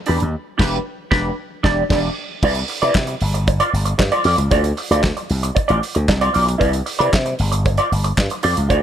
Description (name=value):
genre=disco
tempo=115 BPM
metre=4/4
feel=straight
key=unclear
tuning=A4 = 440 Hz
part: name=electric guitar through a small old amp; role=accompaniment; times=0.1-8.8 s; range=D4 to D5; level=-20 LUFS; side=right 2 dB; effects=wah
part: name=slap bass with an envelope filter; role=bass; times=0.1-8.8 s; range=E1 to C3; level=-19 LUFS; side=equal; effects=none
part: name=damped 70s drum kit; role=drums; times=0.1-8.8 s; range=crash cymbal, handclaps, hi-hat, kick drum, snare drum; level=-21 LUFS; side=equal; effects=none
room=little or no reverb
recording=none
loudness=-16 LUFS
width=side -10 dB against mid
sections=0.0-2.4 A section; 2.4-8.8 B section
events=band accent 0.3-2.4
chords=0.1 Em7; 2.4 Cmaj9; 3.2 G7sus4; 4.5 Dm7; 6.6 Cmaj9; 7.4 G7sus4